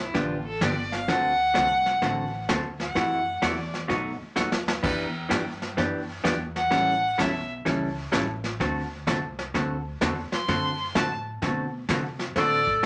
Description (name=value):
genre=country, western swing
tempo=128 BPM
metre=4/4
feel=swing 66% on 8ths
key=D mixolydian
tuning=A4 = 440 Hz
part: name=rich fiddle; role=melody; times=0.0-3.7, 6.6-12.8 s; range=E4 to C6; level=-28 LUFS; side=equal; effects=none
part: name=upright bass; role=bass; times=0.0-12.9 s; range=G1 to C3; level=-39 LUFS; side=equal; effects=none
part: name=vintage hollow-body jazz guitar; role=accompaniment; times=0.1-12.9 s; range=B2 to A4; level=-30 LUFS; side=equal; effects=none
part: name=vintage brush drum kit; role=drums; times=0.1-12.9 s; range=brushed snare drum, crash cymbal, hi-hat, kick drum, snare drum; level=-32 LUFS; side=equal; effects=none
part: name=clear clarinet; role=second line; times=12.4-12.8 s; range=A4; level=-24 LUFS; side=equal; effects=none
room=wet club reverb, RT60 0.5 s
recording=none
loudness=-26 LUFS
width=mono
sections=0.0-12.4 A section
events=fiddle solo 0.0-12.4; drum fill 4.4-4.8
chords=0.0 G7; 1.1 D7; 3.0 F#m7b5; 3.9 B7; 4.8 Em7; 6.7 A7; 8.6 D7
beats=0.14 0.61 | 1.08 1.55 2.02 2.50 | 2.96 3.43 3.90 4.37 | 4.84 5.31 5.78 6.25 | 6.72 7.19 7.66 8.13 | 8.60 9.07 9.54 10.01 | 10.48 10.95 11.42 11.89 | 12.36 12.84